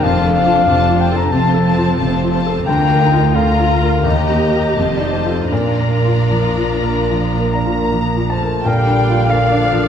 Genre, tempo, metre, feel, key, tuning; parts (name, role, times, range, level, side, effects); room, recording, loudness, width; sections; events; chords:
classical, romantic movement for piano and orchestra; 68-96 BPM; 4/4; rubato; Bb major; A4 = 439 Hz
clear grand piano; melody; 0.0-9.9 s; D2 to Bb5; -17 LUFS; left 2 dB
warm symphonic violin section; melody; 0.0-9.9 s; F5 to Bb5; -24 LUFS; left 6 dB
dark clarinet; second line; 0.0-9.9 s; Bb4 to Bb5; -20 LUFS; left 3 dB
warm symphonic violin section; second line; 0.0-9.9 s; F4 to Bb5; -26 LUFS; left 1 dB
warm symphonic viola section; accompaniment; 0.0-9.9 s; C4 to D5; -24 LUFS; right 4 dB
rich symphonic cello section; bass; 0.0-9.9 s; D2 to Bb2; -22 LUFS; right 3 dB
rich symphonic double bass section; bass; 0.0-9.9 s; F1 to Eb2; -21 LUFS; right 4 dB
hollow concert flute; second line; 7.5-9.9 s; F5 to Bb5; -24 LUFS; left 1 dB
warm French horn section; sustained chords; 7.5-9.9 s; F3 to Bb3; -25 LUFS; left 2 dB
warm oboe; second line; 8.7-9.9 s; F5; -24 LUFS; equal
mellow bassoon; accompaniment; 8.7-9.9 s; D3; -25 LUFS; right 1 dB
wet scoring stage reverb, RT60 1.7 s; dark, warm production; -13 LUFS; side -8 dB against mid
0.0-8.7 A section; 8.7-9.9 B section
0.0 F; 2.7 Bb/D; 4.0 Eb; 4.8 F7; 5.5 Bb